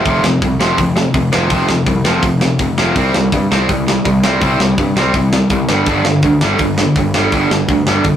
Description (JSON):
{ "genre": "punk rock", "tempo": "165 BPM", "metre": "4/4", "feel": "straight", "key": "unclear", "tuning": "A4 = 440 Hz", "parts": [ { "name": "overdriven electric guitar", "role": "riff", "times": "0.0-8.2 s", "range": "F2 to C4", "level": "-17 LUFS", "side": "right 4 dB", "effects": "none" }, { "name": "tight distorted guitar", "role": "riff", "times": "0.0-8.2 s", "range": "F2 to C4", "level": "-18 LUFS", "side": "left 4 dB", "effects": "distortion" }, { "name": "fuzz picked electric bass", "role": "bass", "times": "0.1-8.2 s", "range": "F1 to G2", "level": "-18 LUFS", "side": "equal", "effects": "overdrive" }, { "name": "tight metal drum kit", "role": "drums", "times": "0.1-8.1 s", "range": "hi-hat, kick drum, snare drum", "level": "-17 LUFS", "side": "equal", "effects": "none" } ], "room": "moderate studio reverb, RT60 0.6 s", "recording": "rough rehearsal-room recording, tube saturation", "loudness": "-11 LUFS", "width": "side -10 dB against mid", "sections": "0.0-8.2 A section", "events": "none", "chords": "0.0 F5; 3.0 C5; 5.7 G5" }